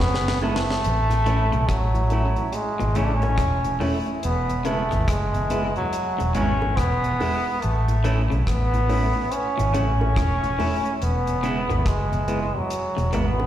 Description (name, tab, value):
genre	roots reggae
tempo	71 BPM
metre	4/4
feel	swing 62% on 16ths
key	A major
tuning	A4 = 440 Hz
part	bright trombone	melody	0.0-13.5 s	F#3 to D4	-25 LUFS	equal	dub echo, slapback echo
part	vintage muted fingered electric bass	bass	0.0-13.5 s	E1 to B1	-23 LUFS	equal	none
part	deep reggae drum kit	drums	0.0-13.4 s	hi-hat, kick drum, rim click, snare drum	-29 LUFS	equal	analog delay
part	mellow tonewheel organ	accompaniment	0.2-13.5 s	E2 to E4	-34 LUFS	left 2 dB	chorus vibrato, slow rotary speaker, slapback echo
part	semi-hollow electric guitar	accompaniment	0.4-13.4 s	G#3 to E4	-30 LUFS	right 4 dB	spring reverb, dub echo, slapback echo
part	bongos	percussion	0.4-13.5 s	none	-35 LUFS	right 3 dB	none
part	twangy electric guitar	arpeggios	1.3-13.3 s	G#2 to E3	-33 LUFS	left 5 dB	slapback echo
room	light reverb, small room ambience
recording	live gig heard through the venue's PA, recital hall reverb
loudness	-20 LUFS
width	side -11 dB against mid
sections	0.8-13.5 A section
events	drum fill 0.0-0.8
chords	0.0 E; 0.8 A; 4.2 E; 7.6 A; 11.0 E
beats	0.00 | 0.84 1.69 2.54 3.39 | 4.23 5.08 5.93 6.78 | 7.62 8.47 9.32 10.17 | 11.02 11.86 12.71